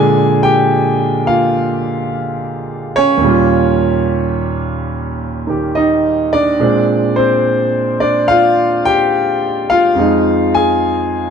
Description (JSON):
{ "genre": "solo jazz", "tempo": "71 BPM", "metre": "4/4", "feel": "swing 67% on 8ths", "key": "Bb mixolydian", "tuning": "A4 = 440 Hz", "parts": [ { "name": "clear concert grand piano", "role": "solo", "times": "0.0-11.3 s", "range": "Eb2 to Ab5", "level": "-12 LUFS", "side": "equal", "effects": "none" } ], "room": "light reverb", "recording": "close, detailed microphones", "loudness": "-12 LUFS", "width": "side -7 dB against mid", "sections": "0.0-11.3 A section", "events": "none", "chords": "0.0 Bb7; 3.2 Eb9; 6.6 Bb9; 10.0 Fm7" }